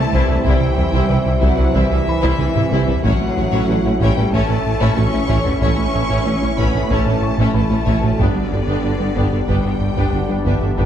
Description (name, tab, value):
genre	cinematic, hybrid orchestral and electronic film score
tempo	93 BPM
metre	4/4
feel	straight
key	unclear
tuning	A4 = 440 Hz
part	rich symphonic violin section	melody	0.0-10.9 s	D5 to C#6	-28 LUFS	left 4 dB	none
part	warm symphonic violin section	second line	0.0-10.9 s	D4 to C#5	-27 LUFS	left 4 dB	none
part	clear symphonic viola section	accompaniment	0.0-10.9 s	G3 to E4	-25 LUFS	equal	none
part	clear trombone section	sustained chords	0.0-10.9 s	D3 to C#4	-28 LUFS	right 2 dB	none
part	mellow French horn section	sustained chords	0.0-10.9 s	D3 to C#4	-28 LUFS	left 2 dB	none
part	sweeping resonant pad	sustained chords	0.0-10.9 s	E3 to E5	-28 LUFS	right 1 dB	chorus
part	harp-like synth pluck	arpeggios	0.0-10.9 s	C3 to G4	-27 LUFS	equal	none
part	round analog bass	riff	0.0-10.9 s	C2 to A3	-21 LUFS	right 1 dB	none
part	rich symphonic cello section	bass	0.0-10.9 s	D3 to C#4	-26 LUFS	right 1 dB	none
part	rich symphonic double bass section	bass	0.0-10.8 s	G1 to C2	-26 LUFS	right 2 dB	none
part	snarling distorted saw bass	bass	0.0-10.9 s	G1 to C2	-26 LUFS	left 1 dB	distortion
part	mellow tuba	bass	0.1-10.8 s	G1 to C2	-26 LUFS	right 3 dB	none
part	taiko ensemble	drums	0.1-10.9 s	none	-23 LUFS	left 1 dB	none
part	felt-muted upright piano	texture	2.1-10.9 s	G5 to C#6	-33 LUFS	left 1 dB	none
room	moderate scoring stage reverb, RT60 1.7 s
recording	dark, warm production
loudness	-14 LUFS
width	side -10 dB against mid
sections	0.0-10.9 A section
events	drum fill 2.4-3.0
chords	0.0 C; 3.0 A6; 8.2 G